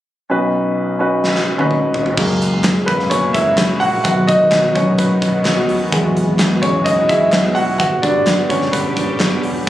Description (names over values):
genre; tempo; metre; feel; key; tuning
piano-driven pop; 128 BPM; 4/4; straight; B major; A4 = 440 Hz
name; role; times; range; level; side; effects
clear grand piano; accompaniment; 0.3-9.7 s; B1 to F#5; -15 LUFS; equal; none
huge arena drum kit; drums; 1.2-9.7 s; crash cymbal, hi-hat, kick drum, snare drum, toms; -19 LUFS; equal; none
sweeping resonant pad; sustained chords; 2.2-9.7 s; C#3 to G4; -21 LUFS; equal; chorus
vintage muted fingered electric bass; bass; 2.2-9.7 s; E1 to E2; -25 LUFS; equal; none
group handclap; percussion; 2.6-9.3 s; none; -27 LUFS; left 2 dB; none
room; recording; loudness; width
moderate studio reverb, RT60 0.5 s; recorded on a phone in the room, club reverb; -13 LUFS; side -13 dB against mid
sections
0.3-2.2 A section; 2.2-9.7 B section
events
drum fill 1.2-2.2; grand piano solo 2.2-9.7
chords
0.3 Badd9; 2.2 F#add9; 4.0 B; 5.9 Eadd9; 7.8 G